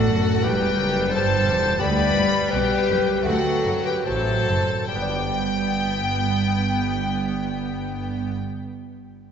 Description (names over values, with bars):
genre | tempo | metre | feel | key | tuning
classical, baroque-style concerto movement with solo episodes | 70-92 BPM | 4/4 | straight | G major | A4 = 441 Hz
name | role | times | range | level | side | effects
hollow concert flute | melody | 0.0-8.3 s | A4 to G5 | -25 LUFS | left 2 dB | none
rich chamber violin section | melody | 0.0-8.3 s | F#5 to B5 | -29 LUFS | left 4 dB | none
rich chamber violin section | second line | 0.0-8.3 s | F#4 to G5 | -29 LUFS | left 2 dB | none
bright symphonic viola section | accompaniment | 0.0-8.3 s | F#3 to B3 | -28 LUFS | equal | none
lute | accompaniment | 0.0-8.6 s | D2 to D5 | -32 LUFS | right 1 dB | none
clear chamber double bass section | bass | 0.0-8.3 s | E1 to D2 | -27 LUFS | right 2 dB | none
rich chamber cello section | bass | 0.0-8.3 s | D2 to B2 | -28 LUFS | right 3 dB | none
room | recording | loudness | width
wet church reverb, RT60 2.6 s | recorded in a church or concert hall, nothing above 7.9 kHz | -20 LUFS | side -7 dB against mid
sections
0.0-4.9 A section; 4.9-8.3 B section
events
slowing down 0.0-4.9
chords
0.4 Em; 1.8 G; 3.3 D7; 4.9 G